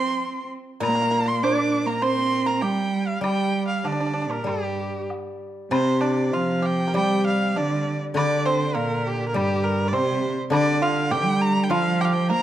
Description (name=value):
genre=chinese traditional, Chinese chamber ensemble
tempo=100 BPM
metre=4/4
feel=rubato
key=G yu mode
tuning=A4 = 440 Hz
part: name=clear erhu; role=melody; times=0.0-12.4 s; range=G4 to D6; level=-26 LUFS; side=equal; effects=none
part: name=pipa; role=second line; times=0.0-12.4 s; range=G3 to D5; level=-29 LUFS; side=right 3 dB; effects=none
part: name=warm cello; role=second line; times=0.0-12.4 s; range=G2 to D4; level=-25 LUFS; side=right 3 dB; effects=none
part: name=steel-string zither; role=accompaniment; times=0.0-12.4 s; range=Bb2 to G3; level=-27 LUFS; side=left 3 dB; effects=none
part: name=woodblock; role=percussion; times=0.8-11.9 s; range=none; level=-34 LUFS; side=left 4 dB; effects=none
room=moderate recital hall reverb, RT60 1.5 s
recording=dark, warm production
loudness=-20 LUFS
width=side -12 dB against mid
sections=0.0-5.7 A section; 5.7-12.4 B section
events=none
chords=none